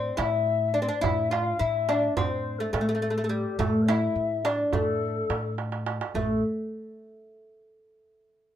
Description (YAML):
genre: Turkish makam ensemble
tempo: 212 BPM (eighths)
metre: 9/8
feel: straight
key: A makam nihavent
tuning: A4 = 439 Hz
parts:
  - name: oud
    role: melody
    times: 0.0-6.4 s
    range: G3 to F4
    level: -27 LUFS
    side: equal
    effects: none
  - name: upright bass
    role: bass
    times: 0.0-6.4 s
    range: A1 to A2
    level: -32 LUFS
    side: equal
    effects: none
  - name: low ney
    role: second line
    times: 0.2-6.4 s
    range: G4 to F5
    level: -29 LUFS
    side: left 7 dB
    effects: none
  - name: darbuka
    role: percussion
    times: 0.2-6.4 s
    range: none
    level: -32 LUFS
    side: right 6 dB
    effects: none
room: light reverb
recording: minimal, uncompressed stereo recording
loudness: -24 LUFS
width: side -10 dB against mid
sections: 0.0-6.1 A section; 6.1-8.6 B section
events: drum fill 5.6-6.1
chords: none